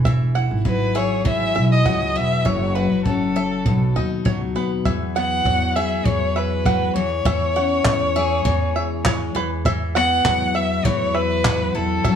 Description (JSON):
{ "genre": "acoustic pop", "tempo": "100 BPM", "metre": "4/4", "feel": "straight", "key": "E major", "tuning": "A4 = 443 Hz", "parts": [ { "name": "picked steel-string acoustic guitar", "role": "accompaniment", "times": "0.0-12.2 s", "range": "B2 to A4", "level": "-24 LUFS", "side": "left 4 dB", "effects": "none" }, { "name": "upright bass", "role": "bass", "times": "0.0-12.2 s", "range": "E1 to F#2", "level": "-23 LUFS", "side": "right 1 dB", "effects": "none" }, { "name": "bluegrass banjo", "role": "arpeggios", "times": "0.1-12.2 s", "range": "B4 to F#5", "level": "-27 LUFS", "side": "right 6 dB", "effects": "none" }, { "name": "jazz brush drum kit", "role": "drums", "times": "0.1-12.2 s", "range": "handclaps, kick drum", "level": "-23 LUFS", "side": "equal", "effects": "none" }, { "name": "warm violin", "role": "melody", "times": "0.7-12.2 s", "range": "A4 to F#5", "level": "-22 LUFS", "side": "left 1 dB", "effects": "tape echo" } ], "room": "moderate studio reverb, RT60 0.9 s", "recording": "none", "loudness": "-17 LUFS", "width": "side -8 dB against mid", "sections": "0.0-4.9 A section; 4.9-12.2 B section", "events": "none", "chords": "0.0 Eadd9; 2.5 F#m; 3.7 B; 4.9 Eadd9; 7.0 C#m/E; 9.4 Esus2" }